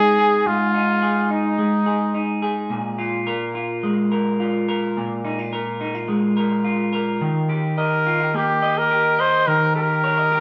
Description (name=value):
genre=indie pop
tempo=107 BPM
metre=4/4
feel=straight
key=Ab major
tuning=A4 = 440 Hz
part: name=clear flugelhorn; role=melody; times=0.0-2.4, 7.8-10.4 s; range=Eb4 to C5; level=-21 LUFS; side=equal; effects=none
part: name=electric guitar through a small old amp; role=arpeggios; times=0.0-10.4 s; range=Ab2 to Eb5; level=-23 LUFS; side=equal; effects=none
room=wet stone room reverb, RT60 1.2 s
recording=band playing live in one room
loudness=-21 LUFS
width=mono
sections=0.0-10.4 A section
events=none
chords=0.0 Ab5; 2.7 Bb5; 7.2 Ebadd9